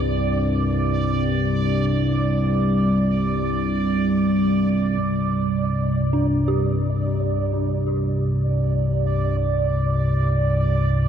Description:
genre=dark ambient drone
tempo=free time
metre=none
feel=none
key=unclear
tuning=A4 = 439 Hz
part: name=analog drone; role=drone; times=0.0-11.1 s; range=C2 to G2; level=-20 LUFS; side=equal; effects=chorus
part: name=bubbling stepped-filter texture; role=texture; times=0.0-11.1 s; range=D5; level=-27 LUFS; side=right 5 dB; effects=chorus, built-in reverb
part: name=dark detuned synth bell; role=arpeggios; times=6.1-11.1 s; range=D4 to G4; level=-28 LUFS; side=equal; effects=chorus, phaser, analog delay
room=wet huge ambient reverb, RT60 8.6 s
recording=dreamy mix soaked in reverb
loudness=-19 LUFS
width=side -8 dB against mid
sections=0.0-5.0 A section; 5.0-11.1 B section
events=filter sweep on synth drone 5.0-11.1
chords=0.0 Csus2

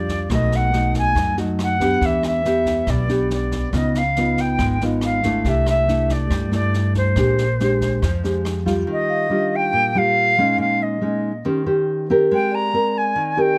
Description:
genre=bossa nova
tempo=140 BPM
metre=4/4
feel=straight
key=Eb major from 8.9 s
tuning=A4 = 440 Hz
part: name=silver concert flute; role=melody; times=0.0-13.6 s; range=C5 to Bb5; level=-23 LUFS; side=equal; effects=none
part: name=nylon-string guitar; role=accompaniment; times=0.0-13.6 s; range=Bb2 to C5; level=-23 LUFS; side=equal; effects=none
part: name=upright bass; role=bass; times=0.0-8.8 s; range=Ab1 to G2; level=-25 LUFS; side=equal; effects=none
part: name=open jazz drum kit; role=drums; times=0.1-8.7 s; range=kick drum, rim click, snare drum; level=-30 LUFS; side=equal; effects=none
part: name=vibraphone with medium mallets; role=accompaniment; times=9.1-13.6 s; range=D5 to F5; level=-35 LUFS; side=equal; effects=none
room=light reverb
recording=close, detailed microphones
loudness=-19 LUFS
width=mono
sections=0.0-8.9 A section; 8.9-13.6 B section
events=none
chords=0.3 B7; 2.0 Em7; 3.7 Db9; 5.5 C69; 7.2 Bb13; 8.9 Ebmaj9; 10.6 Bbm7; 11.4 Eb6; 12.3 Abmaj9

